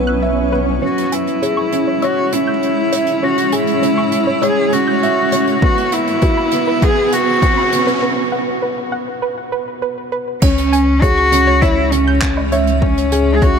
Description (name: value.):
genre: piano and strings electronica.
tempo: 100 BPM.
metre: 4/4.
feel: straight.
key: C# minor.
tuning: A4 = 441 Hz.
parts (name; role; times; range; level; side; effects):
granular cloud pad; sustained chords; 0.0-13.6 s; E3 to E5; -23 LUFS; equal; built-in reverb, sidechain pumping.
felt-muted upright piano; riff; 0.0-13.6 s; B3 to E5; -19 LUFS; equal; ping-pong delay.
warm sub bass; bass; 0.0-0.8, 10.4-13.6 s; B1 to C#2; -18 LUFS; equal; sidechain pumping.
swell and riser; sound effects; 0.0-8.0 s; none; -25 LUFS; right 2 dB; none.
soft round pluck; arpeggios; 0.1-13.6 s; B4 to G6; -24 LUFS; right 2 dB; chorus, sidechain pumping, ping-pong delay.
dark cello; melody; 0.8-13.6 s; C#4 to G#4; -17 LUFS; equal; none.
jazz brush drum kit; drums; 1.0-13.5 s; crash cymbal, handclaps, hi-hat, woodblock; -26 LUFS; right 4 dB; high-pass filter on hats, high-pass filter on cymbals, high-pass filter on snare, high-pass filter on perc, high-pass filter on room.
electronic kick drum; drums; 5.6-13.5 s; none; -15 LUFS; equal; none.
room: moderate huge ambient reverb, RT60 3.7 s.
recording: none.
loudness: -13 LUFS.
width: side -6 dB against mid.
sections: 0.8-10.4 A section; 10.4-13.6 B section.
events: swell 0.0-0.8; build-up 0.8-10.4; riser 0.8-8.0; break 8.0-10.4; drop 10.4-13.6.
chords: 0.0 Bsus4; 0.8 C#m; 5.6 Bsus4; 10.4 C#m.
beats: 0.23 | 0.83 1.43 2.03 2.63 | 3.23 3.83 4.43 5.03 | 5.63 6.23 6.83 7.43 | 8.03 8.63 9.23 9.83 | 10.43 11.03 11.63 12.23 | 12.83 13.43.